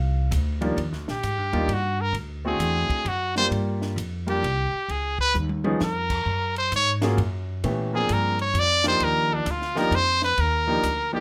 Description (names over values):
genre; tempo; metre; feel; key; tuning
jazz, small-group swing and bop; 131 BPM; 3/4; swing 65% on 8ths; Eb major; A4 = 440 Hz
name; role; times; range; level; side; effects
warm concert grand piano; accompaniment; 0.0-11.2 s; Eb2 to F5; -29 LUFS; equal; none
upright bass; bass; 0.0-11.2 s; Bb1 to Bb2; -29 LUFS; equal; none
compact cocktail drum kit; drums; 0.3-11.0 s; crash cymbal, hi-hat, kick drum, ride cymbal, snare drum, toms; -38 LUFS; equal; none
brilliant trumpet; melody; 1.1-11.2 s; D4 to D5; -26 LUFS; equal; none
room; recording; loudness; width
light reverb; none; -24 LUFS; mono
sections
0.8-11.2 A section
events
trumpet solo 0.8-11.2; drum fill 5.3-5.8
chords
0.0 Bb; 0.8 Ebmaj7; 2.1 D7; 3.5 Gm7; 4.9 Db; 6.3 N.C.; 7.6 Bb7; 9.0 Ebmaj7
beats
0.32 | 0.77 1.23 1.69 | 2.15 2.60 3.06 | 3.52 3.98 4.43 | 4.89 5.35 5.80 | 6.26 6.72 7.17 | 7.63 8.09 8.55 | 9.00 9.46 9.92 | 10.37 10.83